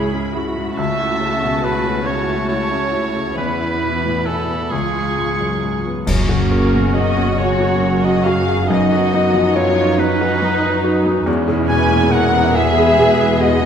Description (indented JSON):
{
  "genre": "cinematic, emotional film score for orchestra",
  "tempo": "46 BPM (dotted quarters)",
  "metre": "6/8",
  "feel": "rubato",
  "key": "F# major from 6.1 s",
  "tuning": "A4 = 440 Hz",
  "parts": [
    { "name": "muted studio violin section", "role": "melody", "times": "0.0-13.7 s", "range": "C#4 to C#6", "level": "-25 LUFS", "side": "left 2 dB", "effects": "none" },
    { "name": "clear baby grand piano", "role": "accompaniment", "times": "0.0-13.7 s", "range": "C#2 to G#4", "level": "-21 LUFS", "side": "left 1 dB", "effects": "none" },
    { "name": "muted studio viola section", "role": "accompaniment", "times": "0.0-13.7 s", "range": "F#3 to E#4", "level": "-23 LUFS", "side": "right 1 dB", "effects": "none" },
    { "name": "concert harp", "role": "arpeggios", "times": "0.0-13.7 s", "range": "E2 to B5", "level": "-25 LUFS", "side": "left 8 dB", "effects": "none" },
    { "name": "muted studio cello section", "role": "bass", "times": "0.0-13.7 s", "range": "D#4 to G#4", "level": "-24 LUFS", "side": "right 3 dB", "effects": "none" },
    { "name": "muted studio double bass section", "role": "bass", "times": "0.0-13.7 s", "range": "C#2 to F#2", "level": "-23 LUFS", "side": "right 4 dB", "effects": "none" },
    { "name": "clear oboe", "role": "second line", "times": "0.8-6.1 s", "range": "G#4 to E5", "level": "-23 LUFS", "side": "right 3 dB", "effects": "none" },
    { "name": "muted studio violin section", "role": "second line", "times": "0.8-13.7 s", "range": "G#4 to G#5", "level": "-25 LUFS", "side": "left 2 dB", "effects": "none" },
    { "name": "clash cymbals and concert bass drum", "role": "percussion", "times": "6.1-7.8 s", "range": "none", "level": "-23 LUFS", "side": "equal", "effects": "none" },
    { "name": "clear clarinet", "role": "second line", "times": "6.5-13.7 s", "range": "A#4 to G#5", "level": "-20 LUFS", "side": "left 1 dB", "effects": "none" }
  ],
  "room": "wet concert hall reverb, RT60 2.0 s",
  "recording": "none",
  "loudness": "-14 LUFS",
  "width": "side -8 dB against mid",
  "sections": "0.0-6.1 A section; 6.1-13.7 A section",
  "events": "band accent 6.1-6.9",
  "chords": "0.0 C#m; 0.8 A/C#; 3.4 E; 4.7 C#7; 6.1 F#; 8.7 B/F#; 11.3 E"
}